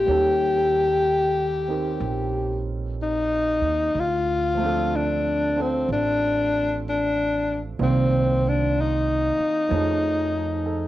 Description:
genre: jazz ballad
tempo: 62 BPM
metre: 4/4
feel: swing 66% on 8ths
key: unclear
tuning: A4 = 437 Hz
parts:
  - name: mellow tenor saxophone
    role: melody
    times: 0.0-10.9 s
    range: C4 to G4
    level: -22 LUFS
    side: left 2 dB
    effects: cassette tape
  - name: warm grand piano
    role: accompaniment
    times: 0.0-10.9 s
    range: Eb3 to D5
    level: -30 LUFS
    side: right 6 dB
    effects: cassette tape
  - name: upright bass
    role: bass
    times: 0.0-10.9 s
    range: A1 to F2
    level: -27 LUFS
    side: right 2 dB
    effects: none
room: moderate small room reverb, RT60 0.5 s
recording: home recording on cassette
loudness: -20 LUFS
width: side -14 dB against mid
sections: 0.0-10.9 A section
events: none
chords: 0.1 Eb7#11; 3.9 Dm7; 7.8 Cm11; 9.7 F7alt

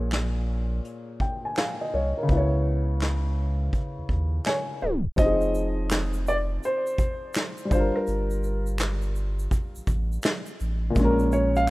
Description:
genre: lo-fi hip hop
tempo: 83 BPM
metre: 4/4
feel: swing 66% on 16ths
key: unclear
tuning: A4 = 442 Hz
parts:
  - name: dark upright piano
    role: accompaniment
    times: 0.0-11.7 s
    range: Bb2 to Ab5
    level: -28 LUFS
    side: left 1 dB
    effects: cassette tape, low-pass filter
  - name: warm sub bass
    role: bass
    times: 0.0-11.7 s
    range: Fb1 to Eb2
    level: -26 LUFS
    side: equal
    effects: none
  - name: vintage brush drum kit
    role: drums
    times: 0.1-11.7 s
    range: handclaps, hi-hat, kick drum, shaker, snare drum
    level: -27 LUFS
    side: equal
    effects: none
  - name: felt-muted upright piano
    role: melody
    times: 4.5-11.7 s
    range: Bb4 to F5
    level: -27 LUFS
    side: right 1 dB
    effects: low-pass filter, analog delay
room: small room ambience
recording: rough home demo mix, tape stop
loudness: -23 LUFS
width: side -19 dB against mid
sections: 0.0-5.2 A section; 5.2-11.7 B section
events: upright piano fill 4.1-5.2; tape stop 4.8-5.2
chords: 0.0 Bbm7; 2.3 Dbm7; 5.2 Fm7; 7.7 Gm7; 11.0 Bbm7

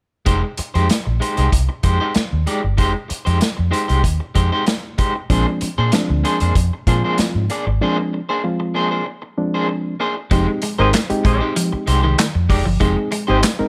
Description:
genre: funk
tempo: 96 BPM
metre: 4/4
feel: straight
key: F dorian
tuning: A4 = 439 Hz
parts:
  - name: electric guitar at the edge of break-up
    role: accompaniment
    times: 0.3-13.6 s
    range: Ab3 to D5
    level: -24 LUFS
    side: equal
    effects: tremolo
  - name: vintage muted fingered electric bass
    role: bass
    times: 0.3-13.6 s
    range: F1 to Bb2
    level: -20 LUFS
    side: equal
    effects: none
  - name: vintage drum kit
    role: drums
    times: 0.3-13.6 s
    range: handclaps, hi-hat, kick drum, snare drum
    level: -22 LUFS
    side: equal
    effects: none
  - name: reed electric piano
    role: stabs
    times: 5.3-13.7 s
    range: F3 to Bb4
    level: -24 LUFS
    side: equal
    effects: none
  - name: clean electric guitar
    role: riff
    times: 10.3-13.3 s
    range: Eb3 to Ab3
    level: -27 LUFS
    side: equal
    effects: subtle chorus
  - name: clear horn section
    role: second line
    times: 10.8-13.4 s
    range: C4 to C5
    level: -25 LUFS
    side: equal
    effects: none
room: light reverb, studio reverb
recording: none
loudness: -18 LUFS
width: mono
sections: 0.3-10.3 A section; 10.3-13.7 B section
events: break 7.8-10.3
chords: 0.3 Fm9; 5.3 Bb9; 10.3 Fm9

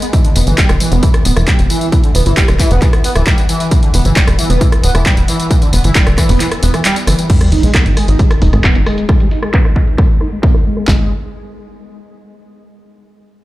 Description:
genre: driving peak-time techno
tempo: 134 BPM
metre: 4/4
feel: straight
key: G# harmonic minor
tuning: A4 = 440 Hz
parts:
  - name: overdriven synth lead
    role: riff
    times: 0.0-11.1 s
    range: D3 to D#4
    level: -18 LUFS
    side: equal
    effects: ensemble chorus, vintage 12-bit sampler grit, sidechain pumping, tape echo
  - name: punchy analog drum machine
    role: drums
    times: 0.0-10.9 s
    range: crash cymbal, handclaps, hi-hat, rim click, tambourine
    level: -18 LUFS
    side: equal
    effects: overdrive, low-pass filter on snare, low-pass filter on hats, low-pass filter on perc, low-pass filter on cymbals
  - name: techno drum kit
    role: drums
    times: 0.1-11.0 s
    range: handclaps, kick drum, snare drum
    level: -11 LUFS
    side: equal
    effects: overdrive
  - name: tight sequencer bass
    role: bass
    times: 0.4-11.1 s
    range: D1 to B1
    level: -12 LUFS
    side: equal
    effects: sidechain pumping
  - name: sub drop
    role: sound effects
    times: 7.3-9.1 s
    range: none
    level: -18 LUFS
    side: equal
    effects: none
room: little or no reverb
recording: played on a big sound system in a bare room, large studio reverb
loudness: -9 LUFS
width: side -17 dB against mid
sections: 0.0-7.3 A section; 7.3-10.9 B section; 10.9-12.7 C section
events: drop 0.0-7.3; break 6.4-7.3; impact 7.3-9.1; filter sweep on drum 7.3-10.9; filter sweep on analog synth lead 7.3-10.9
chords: 0.1 Em; 7.3 G#m; 10.9 N.C.

